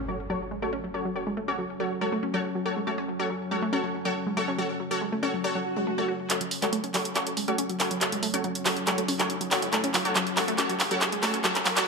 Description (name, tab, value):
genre	driving peak-time techno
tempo	140 BPM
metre	4/4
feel	straight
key	F# minor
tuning	A4 = 442 Hz
part	wide unison pluck	riff	0.0-11.7 s	F#3 to F#4	-32 LUFS	equal	ping-pong delay
part	deep dark ambient pad	drone	0.5-11.9 s	F#3 to C#4	-35 LUFS	left 2 dB	chorus, built-in reverb
part	impact, swell and riser	sound effects	0.0-1.2, 5.6-11.9 s	none	-38 LUFS	equal	none
part	rave stab	stabs	0.1-11.8 s	F#4 to C#5	-30 LUFS	equal	chorus, built-in reverb, digital delay
part	techno drum kit	drums	0.1-11.8 s	handclaps, hi-hat	-26 LUFS	right 1 dB	low-pass filter on hats, low-pass filter on snare, low-pass filter on room, gated reverb
room	moderate plate reverb, RT60 1.8 s, digital ambience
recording	bright 1980s-style digital production, high-pass filter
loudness	-25 LUFS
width	side -4 dB against mid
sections	0.0-6.3 A section; 6.3-11.9 B section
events	impact 0.0-1.2; filter sweep on synth stab 0.0-6.3, 6.3-11.9; swell 5.6-6.3; build-up 6.3-11.9; drum fill 6.3-11.9; filter sweep on synth arpeggio sound 6.3-11.9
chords	0.0 F#m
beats	0.30 0.73 | 1.16 1.58 2.01 2.44 | 2.87 3.30 3.73 4.16 | 4.58 5.01 5.44 5.87 | 6.30 6.73 7.16 7.58 | 8.01 8.44 8.87 9.30 | 9.73 10.16 10.58 11.01 | 11.44 11.87